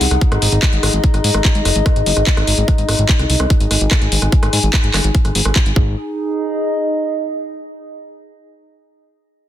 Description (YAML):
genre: psychedelic trance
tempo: 146 BPM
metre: 4/4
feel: straight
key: unclear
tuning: A4 = 440 Hz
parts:
  - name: fat analog bass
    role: bass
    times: 0.0-6.0 s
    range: F#1 to G#2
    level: -17 LUFS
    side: equal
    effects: none
  - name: drum and bass drum kit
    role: drums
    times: 0.0-5.7 s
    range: handclaps, hi-hat, rim click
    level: -19 LUFS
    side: equal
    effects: none
  - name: warbly tape-like pad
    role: texture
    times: 0.0-7.6 s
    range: D#4 to G#5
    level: -20 LUFS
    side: left 1 dB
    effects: chorus, built-in reverb, sidechain pumping
  - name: electronic kick drum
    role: drums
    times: 0.2-5.8 s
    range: none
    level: -14 LUFS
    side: equal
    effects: none
  - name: woody wave-folded pluck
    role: riff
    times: 5.8-6.0 s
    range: G#4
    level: -34 LUFS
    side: right 9 dB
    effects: none
room: light reverb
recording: dense, heavily limited modern master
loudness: -13 LUFS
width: side -12 dB against mid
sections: 0.0-6.0 A section; 6.0-7.6 B section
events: filter sweep on analog synth bass 0.0-6.0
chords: 0.0 G#5